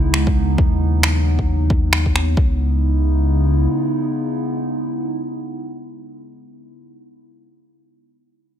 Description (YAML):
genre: future garage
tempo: 134 BPM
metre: 4/4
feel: swing 60% on 16ths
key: C# minor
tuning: A4 = 441 Hz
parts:
  - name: warbly tape-like pad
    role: sustained chords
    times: 0.0-6.7 s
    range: C#3 to E4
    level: -22 LUFS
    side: right 1 dB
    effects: chorus, built-in reverb, sidechain pumping
  - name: warm sub bass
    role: bass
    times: 0.0-3.7 s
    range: C#2 to D#2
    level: -17 LUFS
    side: equal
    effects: sidechain pumping
  - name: electronic finger snaps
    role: drums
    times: 0.1-2.3 s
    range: none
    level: -20 LUFS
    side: right 1 dB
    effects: overdrive
  - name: electronic kick drum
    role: drums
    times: 0.3-2.5 s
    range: none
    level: -18 LUFS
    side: equal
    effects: overdrive
room: light reverb, digital ambience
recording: none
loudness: -16 LUFS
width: side -10 dB against mid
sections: 0.0-2.4 A section; 2.4-6.0 B section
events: none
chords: 0.0 C#m7; 0.6 B/D#; 2.4 C#m7